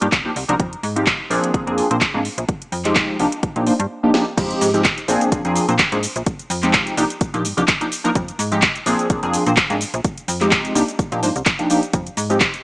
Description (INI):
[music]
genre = filtered disco house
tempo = 127 BPM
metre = 4/4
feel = swing 55% on 16ths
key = F dorian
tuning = A4 = 442 Hz
[part]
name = funky polysynth comp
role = accompaniment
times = 0.0-12.4 s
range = F3 to C5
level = -19 LUFS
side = equal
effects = chorus, phaser, sidechain pumping, low-pass filter
[part]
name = slap-like FM bass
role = bass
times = 0.0-12.5 s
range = Bb1 to Bb2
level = -24 LUFS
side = equal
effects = sidechain pumping, low-pass filter
[part]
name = house drum kit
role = drums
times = 0.0-12.6 s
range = crash cymbal, handclaps, hi-hat, shaker, snare drum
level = -20 LUFS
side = equal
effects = sidechain pumping on hats, studio reverb, sidechain pumping on cymbals, sidechain pumping on perc
[part]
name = electronic kick drum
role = drums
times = 0.1-12.5 s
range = none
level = -21 LUFS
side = equal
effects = studio reverb
[sound]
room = light reverb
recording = small speaker sound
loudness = -16 LUFS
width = side -23 dB against mid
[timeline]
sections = 0.0-4.4 A section; 4.4-12.6 B section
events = filter sweep 0.0-4.4; drum fill 4.1; drop 4.4-12.6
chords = 0.0 Cm11; 0.6 Fm; 1.3 Bb9; 2.5 Fm7; 3.2 Cm11; 4.4 Fm7; 5.1 Bb9; 6.3 Fm7; 7.0 Cm11; 8.2 Fm7; 8.9 Bb9; 10.0 Fm7; 10.8 Cm11; 11.9 Fm7